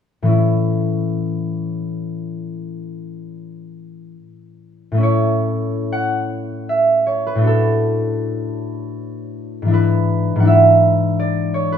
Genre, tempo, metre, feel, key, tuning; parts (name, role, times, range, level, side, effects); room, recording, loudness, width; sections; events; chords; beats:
classical, solo harp piece; 64-84 BPM; 3/4; rubato; A major; A4 = 444 Hz
concert harp; solo; 0.2-11.8 s; G#2 to F#5; -16 LUFS; equal
moderate studio reverb, RT60 0.8 s; minimal, uncompressed stereo recording; -15 LUFS; side -8 dB against mid
0.3-5.0 A section; 5.0-11.8 B section
0.3 A; 7.5 D/A; 9.7 E7/G#
| 0.32 1.11 1.89 | 2.62 3.36 4.15 | 5.04 5.92 6.69 | 7.46 8.24 9.01 | 9.74 10.47 11.20